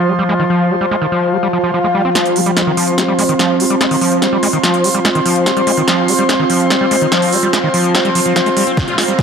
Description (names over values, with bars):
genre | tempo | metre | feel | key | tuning
psychedelic trance | 145 BPM | 4/4 | straight | F minor | A4 = 445 Hz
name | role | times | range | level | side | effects
overtone-sweeping drone | sustained chords | 0.0-9.2 s | F3 to F4 | -18 LUFS | right 1 dB | chorus, built-in reverb, sidechain pumping
screaming distorted acid line | riff | 0.0-9.2 s | Eb3 to F4 | -16 LUFS | equal | distortion, chorus, auto-pan, sidechain pumping, dub echo
airy breathy pad | texture | 0.0-9.2 s | F4 to C6 | -17 LUFS | equal | chorus, sidechain pumping
swell and riser | sound effects | 1.5-2.2, 8.8-9.2 s | none | -23 LUFS | right 1 dB | none
big-room dance drum kit | drums | 2.2-9.2 s | hi-hat, snare drum | -17 LUFS | right 1 dB | overdrive, high-pass filter on snare, high-pass filter on hats, high-pass filter on room
electronic kick drum | drums | 8.8-9.2 s | none | -17 LUFS | equal | overdrive
room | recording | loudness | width
moderate lush hall reverb, RT60 1.8 s | dark, warm production, high-pass filter | -11 LUFS | side -6 dB against mid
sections
0.0-2.2 A section; 2.2-9.2 B section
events
swell 1.5-2.2; build-up 2.2-9.2; drum fill 2.2-9.2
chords
0.0 F5